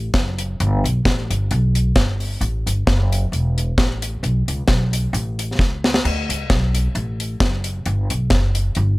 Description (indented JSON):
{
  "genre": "ska",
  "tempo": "132 BPM",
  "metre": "4/4",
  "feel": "swing 55% on 8ths",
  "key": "D major",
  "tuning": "A4 = 439 Hz",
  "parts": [
    { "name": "upright bass", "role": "bass", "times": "0.0-9.0 s", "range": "E1 to D2", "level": "-20 LUFS", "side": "equal", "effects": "none" },
    { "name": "deep reggae drum kit", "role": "drums", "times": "0.1-8.9 s", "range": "crash cymbal, hi-hat, kick drum, snare drum", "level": "-19 LUFS", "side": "equal", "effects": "none" }
  ],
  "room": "light reverb",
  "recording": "none",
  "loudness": "-17 LUFS",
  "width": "side -21 dB against mid",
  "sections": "0.0-9.0 A section",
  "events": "drum fill 5.6-6.0",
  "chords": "none"
}